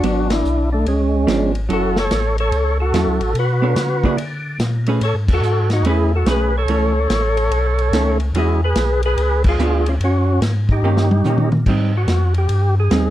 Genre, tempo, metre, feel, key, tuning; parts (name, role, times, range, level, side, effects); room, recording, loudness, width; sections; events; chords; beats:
soul jazz organ trio; 145 BPM; 4/4; swing 65% on 8ths; A4 = 440 Hz
percussive tonewheel organ; melody; 0.0-13.1 s; G#3 to C#5; -20 LUFS; equal; slow rotary speaker, overdrive
vintage hollow-body jazz guitar; accompaniment; 0.0-13.1 s; D#3 to D5; -21 LUFS; right 3 dB
tonewheel organ; bass; 0.0-13.1 s; F#1 to D3; -18 LUFS; equal; overdrive, chorus vibrato, slow rotary speaker
vintage drum kit; drums; 0.0-13.0 s; crash cymbal, hi-hat, kick drum, ride cymbal, snare drum, toms; -23 LUFS; equal
light reverb; dark, warm production; -15 LUFS; side -13 dB against mid
0.0-11.7 A section; 11.7-13.1 B section
band accent 0.2, 5.2, 9.4; drum fill 10.8-11.7; tonewheel organ solo 11.7-13.1
0.0 G#m7b5; 0.9 C#7b9; 1.7 F#m7; 3.4 Bm9; 4.2 A#7; 5.0 Amaj9; 6.7 A; 7.5 B9; 8.3 E69; 9.2 C#7b9; 10.0 F#5; 10.8 D#7; 11.7 Abmaj7
| 0.04 0.45 0.87 1.28 | 1.70 2.11 2.53 2.94 | 3.36 3.77 4.19 4.60 | 5.02 5.43 5.85 6.26 | 6.68 7.09 7.51 7.92 | 8.34 8.76 9.17 9.59 | 10.00 10.41 10.83 11.24 | 11.66 12.07 12.49 12.90